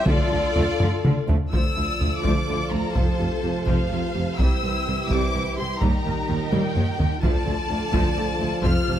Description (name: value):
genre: cinematic, epic orchestral film score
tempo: 84 BPM (dotted quarters)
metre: 6/8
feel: straight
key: D minor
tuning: A4 = 436 Hz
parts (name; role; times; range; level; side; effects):
- rich symphonic violin section; melody; 0.0-9.0 s; F4 to F6; -30 LUFS; left 3 dB; none
- mellow small flute group; second line; 0.0-1.3 s; A4; -32 LUFS; left 9 dB; none
- rich symphonic violin section; second line; 0.0-9.0 s; G4 to D5; -32 LUFS; left 2 dB; none
- rich symphonic viola section; accompaniment; 0.0-9.0 s; C3 to F4; -30 LUFS; left 1 dB; none
- dark French horn section; sustained chords; 0.0-9.0 s; G3 to D5; -35 LUFS; left 4 dB; none
- warm woodwind section; sustained chords; 0.0-1.3 s; D4 to A5; -33 LUFS; equal; none
- dark symphonic double bass section; bass; 0.1-9.0 s; F1 to Eb2; -29 LUFS; right 3 dB; none
- warm symphonic cello section; bass; 0.1-9.0 s; C2 to D3; -29 LUFS; right 2 dB; none
- solo taiko drums; drums; 0.1-9.0 s; none; -24 LUFS; equal; none
- timpani; percussion; 0.1-0.8, 7.2-7.9 s; D3; -29 LUFS; left 1 dB; none
- warm trombone section; sustained chords; 0.5-9.0 s; Bb2 to A3; -32 LUFS; right 5 dB; none
room: light reverb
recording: close, detailed microphones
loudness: -20 LUFS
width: side -11 dB against mid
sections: 0.0-1.5 A section; 1.5-9.0 B section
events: drum fill 0.8-1.5, 6.5-7.2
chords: 0.1 Dm; 3.0 F; 4.4 C; 5.8 Eb; 7.2 Dm